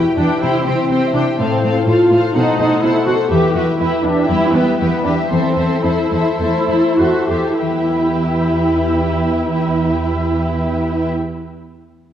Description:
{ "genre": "classical, dramatic, fast romantic movement for symphony orchestra", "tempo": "94-126 BPM", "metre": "4/4", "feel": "rubato", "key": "E minor", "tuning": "A4 = 440 Hz", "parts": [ { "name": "rich symphonic violin section", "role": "melody", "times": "0.0-11.1 s", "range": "E5 to G5", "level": "-27 LUFS", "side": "left 3 dB", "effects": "none" }, { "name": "rich symphonic violin section", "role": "second line", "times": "0.0-11.1 s", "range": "G4 to C5", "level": "-22 LUFS", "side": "left 1 dB", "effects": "none" }, { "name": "concert harp", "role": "arpeggios", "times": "0.0-11.5 s", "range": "A2 to B5", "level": "-20 LUFS", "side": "left 5 dB", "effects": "none" }, { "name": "warm symphonic viola section", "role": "accompaniment", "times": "0.2-11.1 s", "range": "B3 to G4", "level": "-17 LUFS", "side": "right 1 dB", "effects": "none" }, { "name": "warm symphonic cello section", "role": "bass", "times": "0.2-11.1 s", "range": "E2 to C3", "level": "-21 LUFS", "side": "right 2 dB", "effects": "none" } ], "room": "wet scoring stage reverb, RT60 1.5 s", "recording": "worn, warbling old tape, cassette tape, warbly pitch drift", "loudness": "-14 LUFS", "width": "side -10 dB against mid", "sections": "0.0-7.6 A section; 7.6-12.1 B section", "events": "slowing down 2.4-7.6", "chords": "0.4 C; 1.4 F/A; 2.4 B7b9; 3.3 Em; 5.3 Am/E; 7.6 Em" }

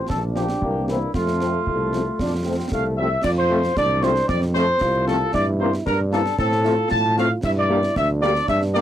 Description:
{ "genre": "military-style march for wind band", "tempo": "114 BPM", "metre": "2/4", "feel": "straight", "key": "F major", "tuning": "A4 = 440 Hz", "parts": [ { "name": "dark trumpet section", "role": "melody", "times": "0.0-8.8 s", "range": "E4 to A5", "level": "-22 LUFS", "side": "equal", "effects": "none" }, { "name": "warm trombone section", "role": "sustained chords", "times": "0.0-8.8 s", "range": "E3 to D4", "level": "-28 LUFS", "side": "left 2 dB", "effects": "none" }, { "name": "warm euphonium", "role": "second line", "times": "0.1-8.8 s", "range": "A3 to F4", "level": "-29 LUFS", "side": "right 4 dB", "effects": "none" }, { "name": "warm tuba", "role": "bass", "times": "0.1-8.8 s", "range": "Bb1 to A2", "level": "-24 LUFS", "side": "equal", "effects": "transformer saturation" }, { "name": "concert snare drum, concert bass drum and clash cymbals", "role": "drums", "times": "0.1-8.8 s", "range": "none", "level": "-29 LUFS", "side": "right 1 dB", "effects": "none" }, { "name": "mellow French horn section", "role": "accompaniment", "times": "0.4-8.8 s", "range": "E3 to G4", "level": "-24 LUFS", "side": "left 3 dB", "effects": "none" } ], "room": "little or no reverb", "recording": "dry, gritty hardware recording", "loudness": "-18 LUFS", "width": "side -11 dB against mid", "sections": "0.0-3.2 A section; 3.2-8.8 B section", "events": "none", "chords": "0.1 Bb; 0.6 C7; 1.1 F; 5.3 C7/G; 6.4 F/A; 7.4 Gm" }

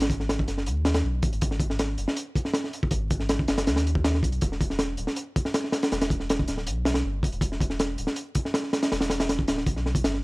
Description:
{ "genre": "drum and bass, jungle", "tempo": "160 BPM", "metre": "4/4", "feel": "straight", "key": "unclear", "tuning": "A4 = 439 Hz", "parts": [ { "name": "soft dub sub bass", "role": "bass", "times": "0.0-10.2 s", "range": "D1 to D#2", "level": "-28 LUFS", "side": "equal", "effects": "none" }, { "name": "crunchy breakbeat drum kit", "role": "drums", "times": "0.0-10.2 s", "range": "hi-hat, kick drum, snare drum", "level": "-25 LUFS", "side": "equal", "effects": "none" } ], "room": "little or no reverb", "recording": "vinyl crackle", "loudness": "-24 LUFS", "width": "side -24 dB against mid", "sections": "0.0-10.2 A section", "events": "none", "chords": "none" }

